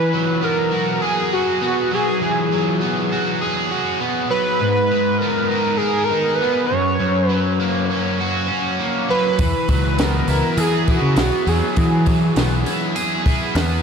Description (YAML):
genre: indie rock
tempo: 101 BPM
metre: 4/4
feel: straight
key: E lydian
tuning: A4 = 440 Hz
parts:
  - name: pulse-width lead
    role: melody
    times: 0.0-12.4 s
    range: F#4 to C#5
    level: -21 LUFS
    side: equal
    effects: chorus, ping-pong delay
  - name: crunchy overdriven guitar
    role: riff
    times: 0.0-13.8 s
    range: F#2 to A#4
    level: -20 LUFS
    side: equal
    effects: wide subtle chorus
  - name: growling picked electric bass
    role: bass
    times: 9.4-13.8 s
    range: B1 to E3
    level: -19 LUFS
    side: equal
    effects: overdrive
  - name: compact cocktail drum kit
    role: drums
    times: 9.4-13.7 s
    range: hi-hat, kick drum, snare drum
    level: -21 LUFS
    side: equal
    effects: none
room: wet huge ambient reverb, RT60 4.0 s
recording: dreamy mix soaked in reverb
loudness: -16 LUFS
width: side -6 dB against mid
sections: 0.0-13.8 A section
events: none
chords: 0.0 Eadd9; 4.6 G#madd9; 6.7 F#; 9.4 Eadd9